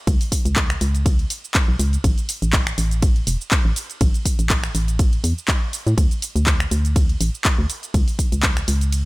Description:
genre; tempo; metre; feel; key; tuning
piano house; 122 BPM; 4/4; swing 55% on 16ths; A major; A4 = 440 Hz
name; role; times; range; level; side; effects
organ-like FM bass; bass; 0.1-9.1 s; E1 to A2; -20 LUFS; equal; sidechain pumping
electronic kick drum; drums; 0.1-8.5 s; none; -19 LUFS; equal; studio reverb
house drum kit; drums; 0.1-9.0 s; finger snaps, handclaps, hi-hat, ride cymbal, shaker; -24 LUFS; equal; studio reverb
room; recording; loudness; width
digital ambience; none; -17 LUFS; side -21 dB against mid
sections
0.0-9.1 A section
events
none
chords
none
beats
| 0.07 0.57 1.06 1.55 | 2.04 2.53 3.02 3.52 | 4.01 4.50 4.99 5.48 | 5.98 6.47 6.96 7.45 | 7.94 8.44 8.93

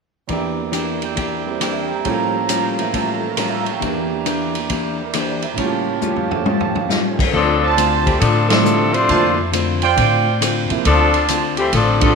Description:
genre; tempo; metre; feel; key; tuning
jazz, big band swing; 136 BPM; 4/4; swing 66% on 8ths; D minor; A4 = 441 Hz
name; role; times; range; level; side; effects
clear concert grand piano; accompaniment; 0.3-12.2 s; E2 to Bb5; -24 LUFS; right 10 dB; none
vintage hollow-body jazz guitar; accompaniment; 0.3-12.0 s; A2 to G4; -24 LUFS; left 9 dB; none
clear trumpet section; stabs; 0.3-11.5 s; F4 to E6; -22 LUFS; right 7 dB; none
swinging big-band drum kit; drums; 0.3-12.1 s; crash cymbal, hi-hat, kick drum, ride cymbal, rim click, snare drum, toms; -22 LUFS; equal; none
clear saxophone section; melody; 7.3-12.2 s; E3 to C5; -17 LUFS; left 4 dB; none
upright bass; bass; 7.3-12.2 s; A1 to A2; -20 LUFS; left 1 dB; none
room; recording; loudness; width
moderate echo chamber reverb, RT60 1.7 s; 1960s-style stereo with parts hard left and right; -15 LUFS; side -5 dB against mid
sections
0.3-7.3 A section; 7.3-12.2 B section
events
drum fill 6.0-6.9; band accent 8.4, 11.9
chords
0.3 Em7b5; 2.1 A7b9b13; 3.8 Em7b5; 5.6 A7b9b13; 7.3 Dm7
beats
| 0.29 0.73 1.17 1.61 | 2.05 2.49 2.93 3.37 | 3.81 4.25 4.69 5.13 | 5.57 6.01 6.46 6.89 | 7.33 7.77 8.21 8.65 | 9.09 9.53 9.97 10.41 | 10.85 11.29 11.72

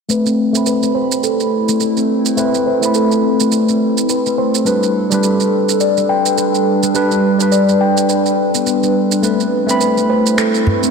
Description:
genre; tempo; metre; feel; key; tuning
organic downtempo; 105 BPM; 4/4; swing 59% on 16ths; A minor; A4 = 440 Hz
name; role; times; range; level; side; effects
tine electric piano; accompaniment; 0.1-10.9 s; G3 to B5; -18 LUFS; equal; medium stereo tremolo, low-pass filter, digital delay
warbly tape-like pad; sustained chords; 1.0-10.9 s; G3 to B5; -19 LUFS; right 1 dB; chorus, built-in reverb, phaser
steel tongue drum; arpeggios; 0.1-10.9 s; G3 to G5; -16 LUFS; left 1 dB; low-pass filter, digital delay
electronic shaker and finger snaps; drums; 0.1-10.9 s; none; -22 LUFS; right 8 dB; overdrive
udu; percussion; 10.7-10.8 s; none; -17 LUFS; right 1 dB; none
room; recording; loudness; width
wet lush hall reverb, RT60 2.3 s; dark, warm production; -12 LUFS; side -5 dB against mid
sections
0.1-10.9 A section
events
filter sweep on steel tongue drum 0.1-10.9; filter sweep on tine electric piano 0.1-10.9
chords
0.1 Amadd9; 4.7 G; 9.2 Amadd9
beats
| 0.10 0.67 1.24 1.81 | 2.38 2.96 3.53 4.10 | 4.67 5.24 5.81 6.38 | 6.96 7.53 8.10 8.67 | 9.24 9.81 10.38

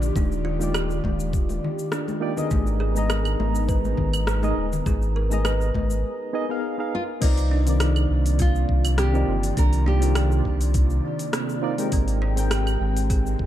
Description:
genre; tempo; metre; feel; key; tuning
sunset chillout; 102 BPM; 4/4; swing 54% on 16ths; unclear; A4 = 440 Hz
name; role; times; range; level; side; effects
airy breathy pad; sustained chords; 0.0-13.5 s; C3 to Bb5; -30 LUFS; right 1 dB; chorus
warm sub bass; bass; 0.0-13.5 s; Eb1 to C2; -22 LUFS; equal; none
deep house drum kit; drums; 0.0-13.4 s; claves, crash cymbal, hi-hat, rim click, shaker; -31 LUFS; equal; overdrive
congas; percussion; 0.0-5.9 s; none; -32 LUFS; left 6 dB; none
kalimba; arpeggios; 0.2-13.4 s; C4 to Cb5; -33 LUFS; right 3 dB; digital delay
electronic kick drum; drums; 0.2-13.5 s; none; -23 LUFS; equal; none
soft electric-piano-like synth keys; accompaniment; 0.6-13.5 s; Eb3 to Bb5; -30 LUFS; equal; chorus, tremolo, auto-pan, digital delay
nylon-string guitar; melody; 6.9-11.6 s; Eb4 to Bb4; -30 LUFS; equal; digital delay
room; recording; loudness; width
light reverb, digital ambience; dark, warm production; -20 LUFS; side -12 dB against mid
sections
0.0-7.2 A section; 7.2-13.5 B section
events
break 6.0-7.2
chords
0.0 Ebmaj9; 2.5 Abmadd9; 7.2 Cm11; 11.9 Abmaj9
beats
| 0.16 0.75 1.33 1.92 | 2.51 3.10 3.69 4.28 | 4.86 5.45 6.04 6.63 | 7.22 7.80 8.39 8.98 | 9.57 10.16 10.75 11.34 | 11.92 12.51 13.10

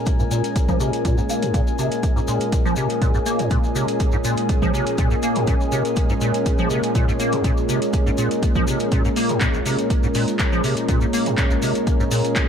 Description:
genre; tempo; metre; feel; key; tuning
acid house; 122 BPM; 4/4; straight; Bb minor; A4 = 439 Hz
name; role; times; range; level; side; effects
lush unison pad; sustained chords; 0.0-12.5 s; Bb2 to Bb4; -24 LUFS; right 1 dB; chorus, sidechain pumping
warbly tape-like pad; texture; 0.0-12.5 s; F4 to Bb5; -27 LUFS; left 3 dB; chorus, built-in reverb, sidechain pumping
electro analog drum machine; drums; 0.1-12.5 s; handclaps, hi-hat; -29 LUFS; equal; none
electronic kick drum; drums; 0.1-12.5 s; none; -21 LUFS; equal; none
maracas; percussion; 0.1-12.5 s; none; -35 LUFS; left 4 dB; none
liquid acid bass; riff; 0.2-12.2 s; Bb1 to Bb3; -24 LUFS; equal; ensemble chorus, tape echo
room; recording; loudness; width
light reverb, digital ambience; none; -18 LUFS; side -8 dB against mid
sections
0.0-12.5 A section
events
filter sweep on acid bass 0.0-12.5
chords
0.0 Bbm7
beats
0.07 0.56 | 1.05 1.54 2.03 2.52 | 3.02 3.51 4.00 4.49 | 4.98 5.48 5.97 6.46 | 6.95 7.44 7.93 8.43 | 8.92 9.41 9.90 10.39 | 10.89 11.38 11.87 12.36

